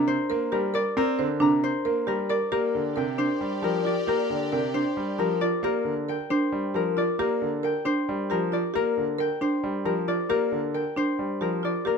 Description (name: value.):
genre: classical, minimalist pattern music.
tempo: 270 BPM (eighths).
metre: 7/8.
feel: straight.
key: Bb major.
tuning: A4 = 440 Hz.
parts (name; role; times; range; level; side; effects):
concert harp; melody; 0.0-12.0 s; Bb4 to Bb5; -28 LUFS; left 9 dB; none.
clear concert grand piano; accompaniment; 0.0-12.0 s; C3 to C4; -30 LUFS; right 3 dB; none.
buzzing marimba with medium hard mallets; arpeggios; 0.0-12.0 s; D4 to C5; -27 LUFS; right 4 dB; none.
rich studio violin section; sustained chords; 2.5-5.4 s; G4 to D5; -34 LUFS; left 3 dB; none.
room: light reverb.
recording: none.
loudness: -23 LUFS.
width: side -5 dB against mid.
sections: 0.0-2.5 A section; 2.5-12.0 B section.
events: none.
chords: 0.0 Gm; 2.5 Bb6.